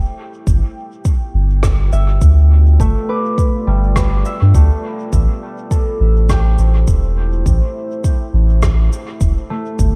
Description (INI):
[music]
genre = ambient dub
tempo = 103 BPM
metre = 4/4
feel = swing 56% on 16ths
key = A minor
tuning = A4 = 441 Hz
[part]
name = deep dark ambient pad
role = sustained chords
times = 0.0-10.0 s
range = A3 to G5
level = -33 LUFS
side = equal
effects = chorus, built-in reverb
[part]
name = concert harp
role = arpeggios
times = 0.0-10.0 s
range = G3 to D6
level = -26 LUFS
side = equal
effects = dub echo
[part]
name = soft dub sub bass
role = bass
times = 0.0-9.9 s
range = E1 to G2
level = -14 LUFS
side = equal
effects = none
[part]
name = cabasa and rim click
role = drums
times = 0.5-9.9 s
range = none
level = -30 LUFS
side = equal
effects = small room ambience, dub echo
[part]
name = electronic kick drum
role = drums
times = 0.5-9.9 s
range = none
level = -18 LUFS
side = equal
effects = small room ambience
[sound]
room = little or no reverb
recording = dark, warm production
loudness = -15 LUFS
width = mono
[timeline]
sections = 0.0-10.0 A section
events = none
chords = 0.5 G7; 5.1 Am7